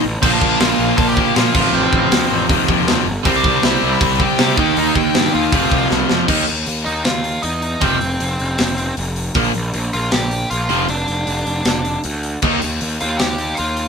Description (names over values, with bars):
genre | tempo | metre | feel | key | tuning
punk rock | 157 BPM | 4/4 | straight | unclear | A4 = 440 Hz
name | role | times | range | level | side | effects
distorted electric guitar | riff | 0.0-12.6 s | F2 to Eb4 | -19 LUFS | left 9 dB | overdrive
overdriven electric guitar | riff | 0.0-12.6 s | F2 to Eb4 | -20 LUFS | right 10 dB | none
overdriven electric guitar | riff | 0.0-6.3 s | F2 to Eb4 | -24 LUFS | right 1 dB | none
fuzz picked electric bass | bass | 0.0-13.9 s | F1 to C3 | -22 LUFS | equal | overdrive
nasal lead guitar with a parked wah | melody | 0.2-13.9 s | C4 to A5 | -21 LUFS | equal | overdrive
tight metal drum kit | drums | 0.2-13.9 s | crash cymbal, hi-hat, kick drum, snare drum | -20 LUFS | equal | none
room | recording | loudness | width
light reverb | band playing live in one room | -14 LUFS | side -6 dB against mid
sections
0.0-6.3 A section; 6.3-13.9 B section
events
drum fill 5.9-6.3; half time 6.3-13.9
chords
0.2 Bb; 1.5 F/A; 3.3 C; 4.6 Eb; 5.5 F5; 6.3 Eb5; 7.8 F5; 9.4 Bb5; 10.7 F5; 12.4 Eb